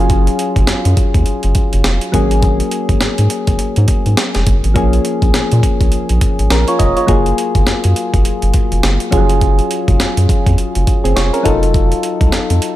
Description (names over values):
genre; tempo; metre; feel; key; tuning
R&B, new jack swing; 103 BPM; 4/4; swing 60% on 16ths; unclear; A4 = 441 Hz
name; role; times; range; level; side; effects
soft electric-piano-like synth keys; accompaniment; 0.0-12.8 s; F3 to Eb5; -17 LUFS; left 2 dB; chorus
round analog bass; bass; 0.0-12.6 s; F1 to Bb2; -14 LUFS; equal; none
breakbeat sampler-style drum kit; drums; 0.1-12.8 s; hi-hat, kick drum, snare drum; -15 LUFS; equal; none
room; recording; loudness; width
little or no reverb; none; -11 LUFS; side -14 dB against mid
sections
0.0-12.8 A section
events
none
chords
0.0 Ebm11/Gb (rootless); 2.1 Ab9sus4; 4.8 Bbm7; 7.1 Gbmaj9; 9.1 Gbmaj7sus2; 11.5 F7b9